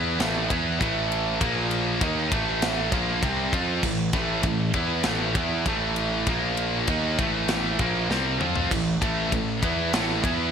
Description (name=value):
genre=heavy metal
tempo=99 BPM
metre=4/4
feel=straight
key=A phrygian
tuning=A4 = 442 Hz
part: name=heavy high-gain guitar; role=riff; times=0.0-10.5 s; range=A2 to F4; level=-29 LUFS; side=left 12 dB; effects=distortion
part: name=heavy high-gain guitar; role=riff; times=0.0-10.5 s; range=A2 to F4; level=-28 LUFS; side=right 10 dB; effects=distortion
part: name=heavy high-gain guitar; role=riff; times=0.0-10.5 s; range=A2 to F4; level=-29 LUFS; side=left 1 dB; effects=distortion
part: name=fuzz picked electric bass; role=bass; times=0.0-10.5 s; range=A1 to F2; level=-29 LUFS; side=left 1 dB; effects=overdrive
part: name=tight metal drum kit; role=drums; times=0.2-10.4 s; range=crash cymbal, kick drum, ride cymbal, snare drum, toms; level=-29 LUFS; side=left 1 dB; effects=gated reverb
room=light reverb, studio ambience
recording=bright 1980s-style digital production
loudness=-22 LUFS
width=side -7 dB against mid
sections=0.0-10.5 A section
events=half time 0.0-10.5; drum fill 8.1-8.7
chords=0.0 A5; 1.4 Bb5; 2.0 Am; 6.3 Bb5; 6.9 Am